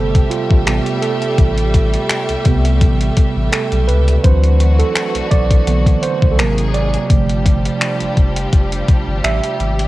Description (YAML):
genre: contemporary R&B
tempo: 84 BPM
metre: 4/4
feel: swing 54% on 16ths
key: A minor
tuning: A4 = 439 Hz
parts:
  - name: mellow tine electric piano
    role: accompaniment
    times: 0.0-9.9 s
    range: C3 to E5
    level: -19 LUFS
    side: right 5 dB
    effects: medium stereo tremolo, cassette tape
  - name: warm studio string section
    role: sustained chords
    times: 0.0-9.9 s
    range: B#2 to E5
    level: -23 LUFS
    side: left 1 dB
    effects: sidechain pumping, cassette tape
  - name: warm sub bass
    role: bass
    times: 0.0-9.9 s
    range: F1 to D2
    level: -16 LUFS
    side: left 1 dB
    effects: none
  - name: clean 12-bit digital drum machine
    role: drums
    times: 0.1-9.9 s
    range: finger snaps, hi-hat, kick drum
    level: -14 LUFS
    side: left 1 dB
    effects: cassette tape
room: digital ambience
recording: home recording on cassette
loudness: -12 LUFS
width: side -17 dB against mid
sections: 0.0-9.9 A section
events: tine electric piano solo 0.0-9.9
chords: 0.0 Am7; 4.2 D13; 6.4 G#9; 7.1 G7sus4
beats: 0.67 | 1.39 2.10 2.81 3.53 | 4.24 4.96 5.67 6.38 | 7.10 7.81 8.53 9.24